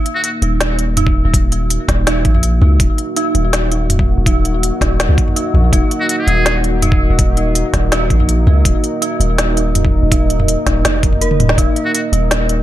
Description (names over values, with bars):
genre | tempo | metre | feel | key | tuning
half-time drum and bass | 164 BPM | 4/4 | half-time | Eb minor | A4 = 440 Hz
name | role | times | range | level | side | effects
dark analog pad | sustained chords | 0.0-12.6 s | Bb3 to F5 | -21 LUFS | equal | chorus, sidechain pumping
dark detuned synth bell | arpeggios | 0.0-12.6 s | Eb4 to Bb4 | -22 LUFS | right 2 dB | chorus, phaser, ping-pong delay
organic electronic drum kit | drums | 0.1-12.6 s | hi-hat, snare drum, toms | -18 LUFS | equal | none
trumpet with metal mute | melody | 0.2-0.3, 6.0-6.6, 11.9-12.0 s | Gb4 to Ab4 | -22 LUFS | equal | tape echo
long sustained 808-style bass | bass | 0.4-12.6 s | Eb1 to Db2 | -15 LUFS | equal | none
electronic kick drum | drums | 1.1-11.7 s | none | -15 LUFS | equal | overdrive
room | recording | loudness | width
digital ambience | none | -12 LUFS | side -13 dB against mid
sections
0.0-12.6 A section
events
drum fill 11.3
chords
0.0 Ebm